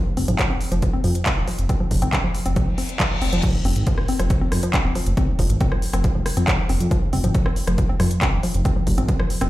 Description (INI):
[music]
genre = driving peak-time techno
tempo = 138 BPM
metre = 4/4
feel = straight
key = F minor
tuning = A4 = 440 Hz
[part]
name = woody wave-folded pluck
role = riff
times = 0.2-9.5 s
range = F3 to C4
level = -26 LUFS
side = left 1 dB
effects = chorus, sidechain pumping, tape echo
[part]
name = dark detuned saw bass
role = bass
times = 0.2-9.5 s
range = Eb1 to F2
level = -22 LUFS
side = equal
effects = sidechain pumping
[part]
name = techno drum kit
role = drums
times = 0.2-9.5 s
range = crash cymbal, handclaps, hi-hat, rim click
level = -27 LUFS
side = equal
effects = overdrive
[part]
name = electronic kick drum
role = drums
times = 0.4-9.2 s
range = none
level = -22 LUFS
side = equal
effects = none
[part]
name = reverse cymbal and impact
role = sound effects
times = 2.7-5.2 s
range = none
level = -31 LUFS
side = left 2 dB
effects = none
[sound]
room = light reverb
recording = played on a big sound system in a bare room, large studio reverb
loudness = -18 LUFS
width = side -16 dB against mid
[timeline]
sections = 0.0-3.4 A section; 3.4-9.5 B section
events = reverse cymbal 2.7-3.4; drop 3.4-9.5; impact 3.4-5.2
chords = 0.0 F5; 3.4 N.C.